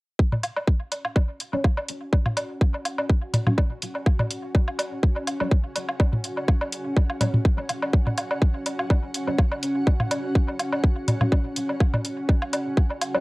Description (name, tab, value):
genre	minimal techno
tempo	124 BPM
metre	4/4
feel	swing 54% on 16ths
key	unclear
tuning	A4 = 440 Hz
part	electronic kick drum	drums	0.2-12.9 s	none	-19 LUFS	equal	overdrive
part	granular cloud pad	texture	1.1-13.2 s	C#4 to F#5	-31 LUFS	equal	built-in reverb, sidechain pumping, cassette tape
part	electronic toms and woodblock	percussion	0.3-13.2 s	none	-26 LUFS	equal	tape echo
part	electronic hi-hat	drums	0.4-13.1 s	none	-31 LUFS	equal	overdrive
part	filtered dub chord stab	stabs	1.5-13.2 s	F#3 to C#5	-30 LUFS	left 1 dB	phaser, ensemble chorus, cassette tape, tape echo
room	moderate studio reverb, RT60 0.6 s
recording	home recording on cassette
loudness	-21 LUFS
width	side -24 dB against mid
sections	0.2-13.2 A section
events	fade-in on ambient pad 0.2-13.2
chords	0.2 F#5